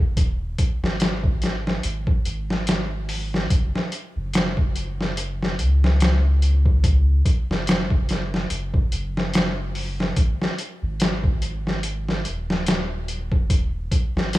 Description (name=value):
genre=trip hop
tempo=72 BPM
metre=4/4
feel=swing 56% on 16ths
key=unclear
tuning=A4 = 440 Hz
part: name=soft dub sub bass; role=bass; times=0.0-14.4 s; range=D#1 to C#2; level=-23 LUFS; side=equal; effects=none
part: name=trip hop sampler-style drum kit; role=drums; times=0.2-14.4 s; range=hi-hat, kick drum, snare drum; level=-21 LUFS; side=equal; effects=none
room=little or no reverb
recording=small room ambience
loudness=-20 LUFS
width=side -17 dB against mid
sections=0.0-14.4 A section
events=none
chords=none